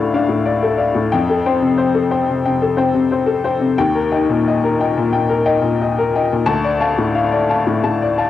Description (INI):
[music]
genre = neoclassical minimalist piano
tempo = 89 BPM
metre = 4/4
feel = rubato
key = unclear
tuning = A4 = 440 Hz
[part]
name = clear upright piano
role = solo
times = 0.0-8.3 s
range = D2 to A5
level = -14 LUFS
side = left 4 dB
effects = cassette tape
[sound]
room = light reverb, small room ambience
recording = home recording on cassette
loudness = -14 LUFS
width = side -12 dB against mid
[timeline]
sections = 0.0-8.3 A section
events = none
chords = 0.0 Dm; 1.1 Fadd9; 3.8 Eb; 6.5 Dm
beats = 0.49 | 1.13 1.79 2.47 3.14 | 3.80 4.48 5.15 5.82 | 6.49 7.17 7.85